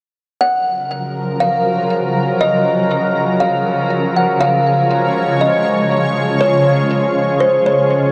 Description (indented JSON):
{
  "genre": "hip hop",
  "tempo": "120 BPM",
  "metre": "4/4",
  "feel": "half-time",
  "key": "unclear",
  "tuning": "A4 = 440 Hz",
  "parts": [
    { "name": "kalimba", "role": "melody", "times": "0.4-7.9 s", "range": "C5 to Gb5", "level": "-18 LUFS", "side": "equal", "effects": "low-pass filter, digital delay" },
    { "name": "shimmering ambient pad", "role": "sustained chords", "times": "0.9-8.1 s", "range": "Db3 to Db5", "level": "-18 LUFS", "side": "equal", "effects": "chorus, built-in reverb" }
  ],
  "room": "moderate huge ambient reverb, RT60 7.7 s",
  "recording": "none",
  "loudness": "-15 LUFS",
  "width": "mono",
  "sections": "0.4-8.1 A section",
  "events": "none",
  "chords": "0.4 Gbmaj7; 4.4 Db"
}